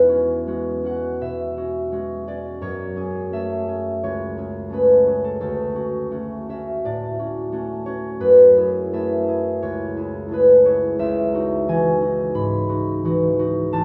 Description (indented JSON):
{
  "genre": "classical, solo harp piece",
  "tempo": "87 BPM",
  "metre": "4/4",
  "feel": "rubato",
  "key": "unclear",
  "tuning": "A4 = 444 Hz",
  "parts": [
    { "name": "concert harp", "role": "solo", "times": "0.0-13.8 s", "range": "A1 to B5", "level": "-20 LUFS", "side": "equal", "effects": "none" }
  ],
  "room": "wet concert hall reverb, RT60 2.0 s",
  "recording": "recorded in a church or concert hall",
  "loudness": "-20 LUFS",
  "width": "mono",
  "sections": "0.0-13.8 A section",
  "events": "none",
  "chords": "0.0 E69; 2.6 F#m9; 5.4 Dmaj7; 8.2 F#m11; 11.0 C#m11",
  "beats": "0.48 1.23 1.93 | 2.63 3.33 4.03 4.73 | 5.42 6.14 6.86 7.54 | 8.23 8.96 9.64 10.31 | 11.00 11.68 12.35 13.04 | 13.73"
}